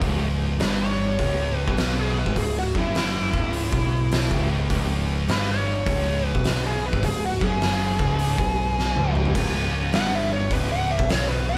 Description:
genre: stoner and doom metal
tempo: 103 BPM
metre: 4/4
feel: swing 66% on 8ths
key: unclear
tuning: A4 = 445 Hz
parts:
  - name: thick fuzz guitar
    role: riff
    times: 0.0-11.6 s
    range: C#2 to B2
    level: -32 LUFS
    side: equal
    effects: distortion
  - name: thick fuzz guitar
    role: riff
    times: 0.0-11.6 s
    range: C#2 to B2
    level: -31 LUFS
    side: equal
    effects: distortion
  - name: overdriven picked electric bass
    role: bass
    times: 0.0-11.5 s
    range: C#1 to B1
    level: -30 LUFS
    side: equal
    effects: none
  - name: oversized low-tuned drum kit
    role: drums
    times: 0.0-11.3 s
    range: crash cymbal, hi-hat, kick drum, snare drum, toms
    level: -28 LUFS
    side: equal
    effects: none
  - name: fuzz lead guitar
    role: melody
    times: 0.6-11.6 s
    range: E4 to F#5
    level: -30 LUFS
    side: equal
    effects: wah, distortion
room: light reverb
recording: band playing live in one room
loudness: -23 LUFS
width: mono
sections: 0.0-11.6 A section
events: lead electric guitar solo 0.0-11.6; drum fill 8.8-9.4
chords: 0.0 C#5

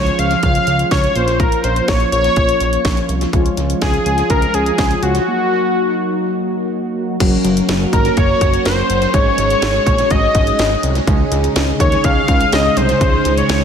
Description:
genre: synth-pop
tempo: 124 BPM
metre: 4/4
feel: straight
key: Db major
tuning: A4 = 440 Hz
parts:
  - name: octave-doubled lead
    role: melody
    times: 0.0-13.6 s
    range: Gb4 to F5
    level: -17 LUFS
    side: left 1 dB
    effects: chorus, tape echo
  - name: mellow synth brass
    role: accompaniment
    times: 0.0-13.6 s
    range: F3 to Ab4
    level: -20 LUFS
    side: equal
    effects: chorus, tape echo
  - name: fat analog bass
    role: bass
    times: 0.0-13.6 s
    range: Gb1 to Eb2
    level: -19 LUFS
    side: equal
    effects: none
  - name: house drum kit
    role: drums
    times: 0.1-13.6 s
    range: crash cymbal, hi-hat, kick drum, snare drum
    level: -18 LUFS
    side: equal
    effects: tape echo
  - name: string machine, full ensemble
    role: sustained chords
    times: 7.2-13.6 s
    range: Db3 to Bb4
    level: -23 LUFS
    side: equal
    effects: phaser, ensemble chorus
room: moderate echo chamber reverb, RT60 1.8 s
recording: echo-heavy mix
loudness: -13 LUFS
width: side -7 dB against mid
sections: 0.0-7.2 A section; 7.2-13.6 B section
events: break 5.3-7.2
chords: 0.0 Db; 1.2 Bbm; 3.3 Db; 5.3 Ebm; 7.2 Gb; 9.1 Ab7sus4; 11.1 Dbsus2

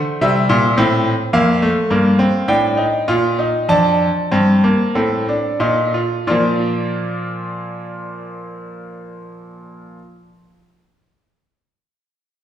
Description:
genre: classical, baroque-style 3-part fugue for grand piano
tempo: 45-55 BPM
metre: 4/4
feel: straight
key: Bb major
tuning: A4 = 442 Hz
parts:
  - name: bright concert grand piano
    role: solo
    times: 0.0-10.0 s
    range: F2 to A5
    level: -15 LUFS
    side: equal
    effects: none
room: wet recital hall reverb, RT60 1.5 s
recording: heard from further back in the room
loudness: -14 LUFS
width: side -10 dB against mid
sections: 0.0-6.3 A section; 6.3-11.6 B section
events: slowing down 0.0-6.3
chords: 0.0 C7; 1.3 F7sus4; 6.3 Bb

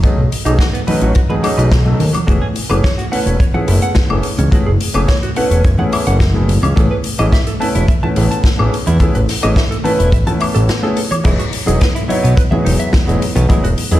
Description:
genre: nu-disco, nu disco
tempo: 107 BPM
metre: 4/4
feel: straight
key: E major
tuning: A4 = 440 Hz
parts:
  - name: warm concert grand piano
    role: accompaniment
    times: 0.0-14.0 s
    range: E3 to C#5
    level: -19 LUFS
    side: left 1 dB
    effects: vintage 12-bit sampler grit, sidechain pumping, ping-pong delay
  - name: direct-recorded clean electric guitar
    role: riff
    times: 0.0-14.0 s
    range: F#3 to A5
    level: -24 LUFS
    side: right 3 dB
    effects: wide subtle chorus, low-pass filter, ping-pong delay
  - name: fat analog bass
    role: bass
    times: 0.0-14.0 s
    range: E1 to E2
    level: -14 LUFS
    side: equal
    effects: tube saturation
  - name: kick drum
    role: drums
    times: 0.0-13.6 s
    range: none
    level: -16 LUFS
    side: equal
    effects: studio reverb
  - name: swinging big-band drum kit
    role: drums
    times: 0.0-14.0 s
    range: crash cymbal, hi-hat, snare drum, woodblock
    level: -22 LUFS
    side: left 2 dB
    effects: studio reverb
  - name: congas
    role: percussion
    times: 0.0-13.6 s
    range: none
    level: -23 LUFS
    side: left 1 dB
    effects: none
room: light reverb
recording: played on a big sound system in a bare room, stone room reverb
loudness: -12 LUFS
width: side -14 dB against mid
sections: 0.0-11.2 A section; 11.2-14.0 B section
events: break 10.7-11.2; drop 11.2-14.0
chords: 0.0 B13; 2.3 F#m11; 6.8 Amaj7; 11.2 Emaj7

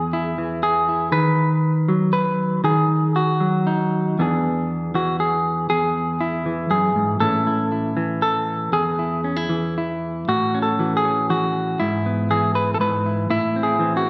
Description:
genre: folk, solo fingerstyle acoustic guitar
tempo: 119 BPM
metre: 3/4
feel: rubato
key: E major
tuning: A4 = 443 Hz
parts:
  - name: semi-hollow electric guitar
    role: solo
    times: 0.0-14.1 s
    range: E2 to B4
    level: -21 LUFS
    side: equal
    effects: none
room: wet recital hall reverb, RT60 1.5 s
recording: recorded in a church or concert hall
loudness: -21 LUFS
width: mono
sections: 0.0-10.3 A section; 10.3-14.1 B section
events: none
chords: 0.0 E; 1.1 B/D#; 4.2 E7; 7.2 A; 8.7 E; 10.3 A6; 11.8 E/G#; 13.3 Am

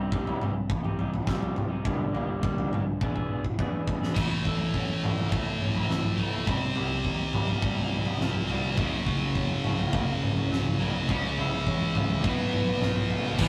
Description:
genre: quiet-loud alternative rock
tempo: 104 BPM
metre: 4/4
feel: straight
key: unclear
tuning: A4 = 440 Hz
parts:
  - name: electric guitar through a small old amp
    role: arpeggios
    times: 0.0-13.4 s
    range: E2 to A4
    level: -37 LUFS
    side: equal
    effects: none
  - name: fuzz picked electric bass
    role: bass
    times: 0.0-13.5 s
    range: E1 to A2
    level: -37 LUFS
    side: equal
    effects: none
  - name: big rock drum kit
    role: drums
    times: 0.1-13.5 s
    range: crash cymbal, kick drum, snare drum, toms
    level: -31 LUFS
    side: equal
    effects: none
  - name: scooped high-gain guitar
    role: riff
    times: 4.1-13.5 s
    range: F#2 to E4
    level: -33 LUFS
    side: equal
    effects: distortion
  - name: distorted electric guitar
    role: riff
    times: 8.8-13.5 s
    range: F#2 to E4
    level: -35 LUFS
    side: equal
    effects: distortion
  - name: fuzz guitar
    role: riff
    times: 13.4-13.5 s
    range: E3 to E4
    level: -32 LUFS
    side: equal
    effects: distortion
room: moderate booth ambience, RT60 0.2 s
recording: rough rehearsal-room recording, tube saturation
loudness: -28 LUFS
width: mono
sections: 0.0-4.2 A section; 4.2-13.4 B section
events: drum fill 3.0-4.2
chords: 0.0 Cm; 1.8 Gm; 3.0 E7; 4.2 A; 6.5 Cm; 8.8 F#; 11.1 C#m; 12.2 B7

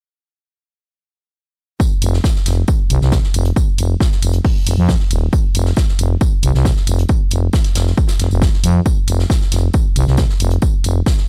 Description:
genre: driving peak-time techno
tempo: 136 BPM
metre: 4/4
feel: straight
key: unclear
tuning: A4 = 440 Hz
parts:
  - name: electronic kick drum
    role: drums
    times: 1.8-11.2 s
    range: none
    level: -18 LUFS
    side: equal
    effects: none
  - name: open jazz drum kit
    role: drums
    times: 1.8-11.3 s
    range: hi-hat, snare drum, tambourine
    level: -32 LUFS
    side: equal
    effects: high-pass filter on hats, high-pass filter on snare, high-pass filter on perc, high-pass filter on room
  - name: growling FM bass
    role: bass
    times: 2.0-11.0 s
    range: Eb1 to F2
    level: -17 LUFS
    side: equal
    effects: sidechain pumping
  - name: electronic hi-hat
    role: drums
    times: 2.0-10.9 s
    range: none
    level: -24 LUFS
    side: equal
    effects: sidechain pumping on hats
room: little or no reverb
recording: dry, gritty hardware recording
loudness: -15 LUFS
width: mono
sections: 1.8-11.3 A section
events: none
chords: none

